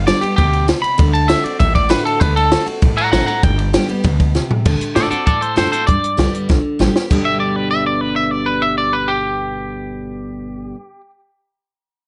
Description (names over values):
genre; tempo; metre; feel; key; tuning
rockabilly; 196 BPM; 4/4; straight; G major; A4 = 440 Hz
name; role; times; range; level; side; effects
twangy electric guitar; melody; 0.0-11.0 s; G4 to B5; -21 LUFS; equal; tape echo
picked steel-string acoustic guitar; accompaniment; 0.0-10.8 s; G2 to G4; -24 LUFS; equal; none
upright bass; bass; 0.0-10.7 s; G1 to A2; -22 LUFS; equal; none
compact cocktail drum kit; drums; 0.1-7.2 s; china cymbal, crash cymbal, hi-hat, kick drum, ride cymbal, snare drum, toms; -19 LUFS; equal; none
room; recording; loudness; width
moderate studio reverb, RT60 0.6 s; nothing above 10.9 kHz; -16 LUFS; mono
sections
0.0-4.7 A section; 4.7-7.1 B section; 7.1-9.6 C section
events
drum fill 4.3-4.7, 6.5-7.1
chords
0.0 G; 1.0 D7; 3.4 G; 4.7 D7; 5.9 G